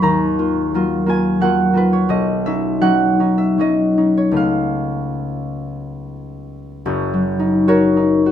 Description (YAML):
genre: classical, solo harp piece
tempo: 68-88 BPM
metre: 3/4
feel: rubato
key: F# major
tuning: A4 = 444 Hz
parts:
  - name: concert harp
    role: solo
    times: 0.0-8.3 s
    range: F#1 to D#6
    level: -15 LUFS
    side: left 1 dB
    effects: none
room: light reverb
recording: close, detailed microphones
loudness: -14 LUFS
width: side -10 dB against mid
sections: 0.0-6.9 A section; 6.9-8.3 B section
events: none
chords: 0.0 D#madd9; 2.1 Badd9; 4.4 C#aug7; 6.9 F#6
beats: | 0.02 0.72 1.40 | 2.09 2.81 3.56 | 4.37 5.22 6.05 | 6.87 7.67